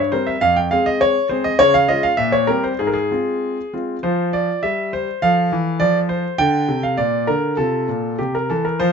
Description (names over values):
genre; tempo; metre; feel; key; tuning
classical-period piano sonatina; 95-104 BPM; 2/4; rubato; F minor, F major from 4.0 s; A4 = 441 Hz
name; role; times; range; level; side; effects
clear grand piano; solo; 0.0-8.9 s; F2 to G5; -16 LUFS; equal; none
room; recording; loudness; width
light reverb; nothing above 7.7 kHz; -16 LUFS; side -6 dB against mid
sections
0.0-4.0 A section; 4.0-8.9 A section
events
none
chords
0.4 Fm; 1.6 Db; 2.2 C5/Bb; 2.8 Fm/Ab; 4.0 N.C.; 5.2 F; 6.4 D5; 7.0 Bb; 7.6 F/C; 8.2 C